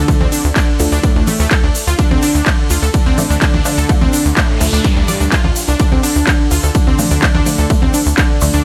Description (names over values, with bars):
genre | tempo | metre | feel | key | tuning
melodic techno | 126 BPM | 4/4 | straight | D minor | A4 = 440 Hz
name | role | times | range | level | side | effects
unison lead | melody | 0.0-8.6 s | G3 to D4 | -24 LUFS | equal | sidechain pumping, digital delay
soft supersaw | second line | 0.0-8.6 s | G2 to D3 | -28 LUFS | equal | sidechain pumping, dub echo
analog pluck | arpeggios | 0.0-8.6 s | A3 to D5 | -23 LUFS | equal | chorus, sidechain pumping, dub echo
filtered dub chord stab | stabs | 0.0-8.6 s | D3 to A3 | -26 LUFS | equal | phaser, sidechain pumping, dub echo
tight sequencer bass | bass | 0.0-8.6 s | C2 to D2 | -18 LUFS | equal | sidechain pumping
electronic kick drum | drums | 0.1-8.3 s | none | -16 LUFS | equal | overdrive
techno drum kit | drums | 0.1-8.5 s | congas, handclaps, hi-hat, ride cymbal | -22 LUFS | equal | overdrive
egg shaker | percussion | 0.1-8.6 s | none | -28 LUFS | equal | none
noise sweep | sound effects | 4.2-5.8 s | none | -30 LUFS | equal | none
room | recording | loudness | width
digital ambience | none | -13 LUFS | mono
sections
0.0-8.6 A section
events
noise sweep 4.2-5.8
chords
0.0 Dm